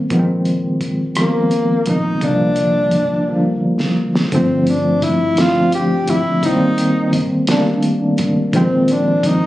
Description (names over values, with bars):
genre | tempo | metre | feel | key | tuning
slow six-eight R&B | 57 BPM (dotted quarters) | 6/8 | straight | unclear | A4 = 439 Hz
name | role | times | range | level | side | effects
mellow tine electric piano | accompaniment | 0.0-9.5 s | D3 to D4 | -16 LUFS | equal | medium tremolo
vintage muted fingered electric bass | bass | 0.0-9.5 s | F1 to C2 | -23 LUFS | left 1 dB | none
cloth-damped thuddy drum kit | drums | 0.1-9.4 s | hi-hat, kick drum, rim click, snare drum | -23 LUFS | equal | none
breathy tenor saxophone | melody | 1.2-9.5 s | Bb3 to G4 | -17 LUFS | left 1 dB | slapback echo
room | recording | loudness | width
light reverb | recorded on a phone in the room, club reverb | -14 LUFS | side -15 dB against mid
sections
0.0-4.3 A section; 4.3-9.5 B section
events
drum fill 3.3-4.3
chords
0.1 Bb9sus4; 2.2 C9sus4; 4.3 G9sus4; 6.4 F9sus4; 8.5 Bb9sus4